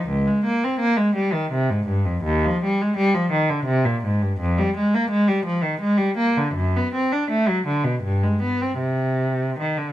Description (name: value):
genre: classical, baroque-style suite movement for unaccompanied cello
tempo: 83 BPM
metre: 3/4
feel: uneven beats, rubato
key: unclear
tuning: A4 = 440 Hz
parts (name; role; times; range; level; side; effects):
- rich cello; solo; 0.0-9.9 s; Db2 to D4; -19 LUFS; equal; none
room: moderate stone room reverb, RT60 0.9 s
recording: none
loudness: -19 LUFS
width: side -13 dB against mid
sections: 0.0-9.9 A section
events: none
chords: none